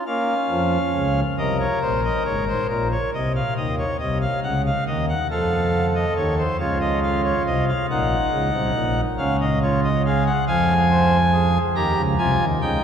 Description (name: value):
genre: classical, baroque-style 3-part fugue for pipe organ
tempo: 46 BPM (dotted quarters)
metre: 12/8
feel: straight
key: Bb minor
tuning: A4 = 439 Hz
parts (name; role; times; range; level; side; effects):
- pipe organ, cornet; solo; 0.0-12.8 s; Ab1 to Bb5; -18 LUFS; equal; none
room: wet cathedral reverb, RT60 5.4 s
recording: recorded in a church or concert hall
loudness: -18 LUFS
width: side -8 dB against mid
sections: 0.1-12.8 A section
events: none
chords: 0.1 Bbm; 2.7 Cm7b5/Bb; 5.3 F7; 7.9 Bbm; 10.5 Fm